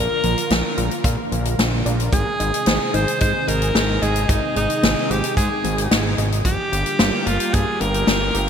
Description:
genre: synthwave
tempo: 111 BPM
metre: 4/4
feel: straight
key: unclear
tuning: A4 = 440 Hz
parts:
  - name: bright alto saxophone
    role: melody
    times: 0.0-8.5 s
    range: Eb4 to C5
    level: -23 LUFS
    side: equal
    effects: ping-pong delay
  - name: analog string pad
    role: sustained chords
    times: 0.0-8.5 s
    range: C3 to Bb4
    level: -26 LUFS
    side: equal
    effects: ensemble chorus, sidechain pumping
  - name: wide unison pluck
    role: arpeggios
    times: 0.0-8.5 s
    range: F3 to Ab5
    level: -30 LUFS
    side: left 1 dB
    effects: ping-pong delay
  - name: fat analog bass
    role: bass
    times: 0.0-8.5 s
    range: G1 to Bb2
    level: -22 LUFS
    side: equal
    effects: none
  - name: swinging big-band drum kit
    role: drums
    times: 0.2-8.5 s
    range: hi-hat, snare drum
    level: -23 LUFS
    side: left 2 dB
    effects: gated reverb
  - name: kick drum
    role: drums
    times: 1.0-7.6 s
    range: none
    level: -23 LUFS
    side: equal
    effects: none
room: moderate lush hall reverb, RT60 2.9 s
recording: bright 1980s-style digital production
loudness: -17 LUFS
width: side -7 dB against mid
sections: 0.0-8.5 A section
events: none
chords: 0.0 Bb; 2.1 Ab; 6.5 Gm7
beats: 0.51 1.05 1.59 | 2.13 2.67 3.21 3.75 | 4.29 4.83 5.37 5.91 | 6.45 6.99 7.53 8.07

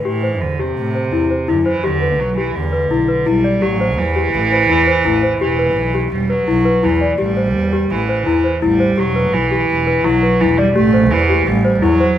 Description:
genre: contemporary instrumental, chamber music in an uneven meter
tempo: 168 BPM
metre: 5/4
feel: straight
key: unclear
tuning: A4 = 438 Hz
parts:
  - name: rich cello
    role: second line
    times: 0.0-12.2 s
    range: C3 to A3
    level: -17 LUFS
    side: right 4 dB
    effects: none
  - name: rich double bass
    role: bass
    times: 0.0-12.0 s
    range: E1 to A2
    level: -20 LUFS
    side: right 1 dB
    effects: none
  - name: celesta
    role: arpeggios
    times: 0.1-12.2 s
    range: E4 to D5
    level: -17 LUFS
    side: left 3 dB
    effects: none
room: moderate recital hall reverb, RT60 1.3 s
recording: none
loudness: -13 LUFS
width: side -11 dB against mid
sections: 0.1-12.2 A section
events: none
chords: 0.1 Am7; 1.8 Em7; 3.6 Am7; 5.4 Em; 7.2 Am7; 9.0 Em; 10.8 Am7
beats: | 0.05 0.41 0.77 1.12 1.48 | 1.84 2.20 2.55 2.91 3.27 | 3.62 3.98 4.34 4.70 5.05 | 5.41 5.77 6.12 6.48 6.84 | 7.20 7.55 7.91 8.27 8.62 | 8.98 9.34 9.69 10.05 10.41 | 10.76 11.12 11.48 11.83

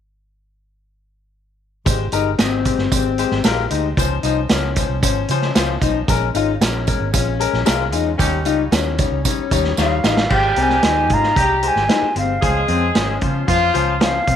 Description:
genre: uptempo 1960s-style soul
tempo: 114 BPM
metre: 4/4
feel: straight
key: Ab major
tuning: A4 = 438 Hz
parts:
  - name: bright upright piano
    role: accompaniment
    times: 1.9-14.4 s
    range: F3 to Eb5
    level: -24 LUFS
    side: left 10 dB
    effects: none
  - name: vintage muted fingered electric bass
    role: bass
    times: 1.9-14.4 s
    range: G1 to Db3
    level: -22 LUFS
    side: right 2 dB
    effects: tube saturation
  - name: vintage drum kit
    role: drums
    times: 1.9-14.4 s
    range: crash cymbal, hi-hat, kick drum, snare drum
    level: -20 LUFS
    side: right 2 dB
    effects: none
  - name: tambourine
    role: percussion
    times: 1.9-10.2 s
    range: none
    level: -29 LUFS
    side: right 16 dB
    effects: none
  - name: electric guitar at the edge of break-up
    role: riff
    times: 2.1-14.4 s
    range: C4 to G4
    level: -23 LUFS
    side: left 9 dB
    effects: none
  - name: warm horn section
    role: second line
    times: 8.2-14.0 s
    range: Eb3 to Ab4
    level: -22 LUFS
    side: equal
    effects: none
  - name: concert flute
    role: melody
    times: 9.8-14.4 s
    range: F5 to Bb5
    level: -19 LUFS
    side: right 1 dB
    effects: none
room: moderate spring reverb, RT60 1.9 s, small room ambience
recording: 1960s-style stereo with parts hard left and right, faint mains hum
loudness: -15 LUFS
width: side -9 dB against mid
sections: 1.9-10.3 A section; 10.3-14.4 B section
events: band accent 8.2-10.3; drum fill 9.8-10.3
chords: 1.9 Abmaj7; 4.0 Dbmaj7; 6.1 Bbm7; 8.2 Eb7; 10.3 Abmaj7; 12.4 Dbmaj7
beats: | 1.86 2.39 2.92 3.44 | 3.97 4.50 5.03 5.55 | 6.08 6.61 7.14 7.67 | 8.20 8.72 9.25 9.78 | 10.31 10.84 11.37 11.90 | 12.43 12.96 13.48 14.02

